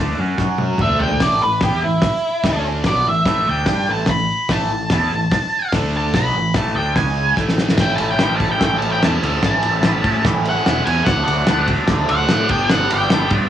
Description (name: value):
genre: garage rock duo or trio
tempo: 146 BPM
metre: 4/4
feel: straight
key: unclear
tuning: A4 = 440 Hz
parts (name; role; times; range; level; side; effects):
- biting overdriven guitar; riff; 0.0-13.5 s; G2 to G4; -21 LUFS; right 1 dB; phaser, cassette tape
- growling fingered electric bass; bass; 0.0-13.5 s; E1 to A2; -22 LUFS; equal; overdrive
- cloth-damped thuddy drum kit; drums; 0.4-13.4 s; crash cymbal, hi-hat, kick drum, ride cymbal, snare drum, toms; -20 LUFS; equal; cassette tape
- octave-fuzz lead guitar; melody; 0.8-13.3 s; E4 to B5; -19 LUFS; equal; distortion, cassette tape, tape echo
room: light reverb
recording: home recording on cassette, small room reverb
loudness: -15 LUFS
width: side -10 dB against mid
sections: 0.0-7.8 A section; 7.8-13.5 B section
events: drum fill 0.4-1.2, 7.4-7.8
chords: 0.4 F#5; 0.8 D5; 1.2 A5; 2.5 D5; 2.9 A5; 5.7 D5; 6.1 A5; 7.0 C#5; 7.4 A5; 7.8 A; 11.1 D; 12.5 G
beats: 0.40 0.81 | 1.22 1.63 2.04 2.45 | 2.86 3.27 3.69 4.09 | 4.51 4.92 5.33 5.74 | 6.15 6.56 6.97 7.38 | 7.79 8.20 8.61 9.02 | 9.43 9.84 10.25 10.66 | 11.07 11.48 11.89 12.30 | 12.71 13.12